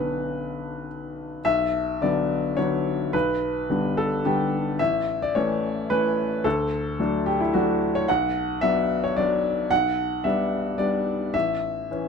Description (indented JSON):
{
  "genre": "neoclassical minimalist piano",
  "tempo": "109 BPM",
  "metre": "3/4",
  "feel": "rubato",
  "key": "B minor",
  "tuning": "A4 = 440 Hz",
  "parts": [
    { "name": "clear upright piano", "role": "solo", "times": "0.0-12.1 s", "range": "A1 to F#5", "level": "-22 LUFS", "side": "left 1 dB", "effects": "none" }
  ],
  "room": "moderate small room reverb, RT60 0.5 s",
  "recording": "close, detailed microphones",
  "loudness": "-22 LUFS",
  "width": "side -6 dB against mid",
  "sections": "0.0-1.5 A section; 1.5-12.1 B section",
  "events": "none",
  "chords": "0.0 Bmadd9; 1.5 Bm; 3.1 G/B; 4.8 A; 6.5 D; 8.1 Bm; 9.7 G/B; 11.3 A"
}